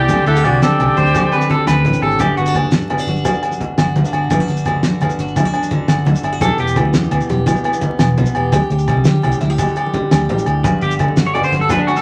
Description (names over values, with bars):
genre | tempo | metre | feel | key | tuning
highlife guitar band | 114 BPM (dotted quarters) | 12/8 | straight | G major | A4 = 440 Hz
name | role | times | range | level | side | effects
clear alto saxophone | melody | 0.0-1.6 s | F#4 to A4 | -22 LUFS | equal | none
clear oboe | second line | 0.0-1.6 s | D5 to F#5 | -22 LUFS | equal | none
picked steel-string acoustic guitar | accompaniment | 0.0-12.0 s | E2 to G4 | -23 LUFS | equal | none
electric guitar at the edge of break-up | arpeggios | 0.0-2.5, 6.4-6.8, 10.6-12.0 s | D4 to D5 | -20 LUFS | equal | none
fingered electric bass | bass | 0.0-11.7 s | E1 to D3 | -21 LUFS | equal | none
damped 70s drum kit | drums | 0.1-12.0 s | hi-hat, kick drum, snare drum | -22 LUFS | equal | none
agogo bells | percussion | 0.1-12.0 s | none | -24 LUFS | equal | none
congas | percussion | 0.1-12.0 s | none | -23 LUFS | equal | none
maracas | percussion | 0.1-12.0 s | none | -38 LUFS | equal | none
room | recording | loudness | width
moderate club reverb, RT60 0.5 s | vinyl crackle | -16 LUFS | mono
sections
0.0-2.2 A section; 2.2-12.0 B section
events
drum fill 2.0; clean electric guitar solo 2.2-12.0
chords
0.1 D7sus4; 2.2 Gmaj7(no3); 6.4 Em; 8.5 Dsus4; 10.6 Gmaj7(no3)